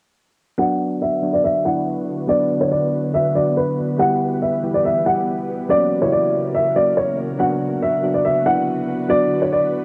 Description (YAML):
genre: hip hop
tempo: 141 BPM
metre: 4/4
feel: half-time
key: B harmonic minor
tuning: A4 = 440 Hz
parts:
  - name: dark baby grand piano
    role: melody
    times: 0.6-9.8 s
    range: B4 to F#5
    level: -21 LUFS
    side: equal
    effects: low-pass filter
  - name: soft electric-piano-like synth keys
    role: accompaniment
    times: 0.6-9.8 s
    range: C#3 to G4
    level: -25 LUFS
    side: equal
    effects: chorus, low-pass filter, cassette tape
  - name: ethereal airy pad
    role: sustained chords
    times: 1.0-9.8 s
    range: C#3 to B4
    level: -28 LUFS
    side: equal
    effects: ensemble chorus, built-in reverb, low-pass filter, cassette tape
room: light reverb, studio reverb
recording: home recording on cassette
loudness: -19 LUFS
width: mono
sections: 0.6-9.8 A section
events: filter sweep 0.6-9.8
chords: 0.6 Bm; 4.0 Em; 5.7 F#; 7.4 Bm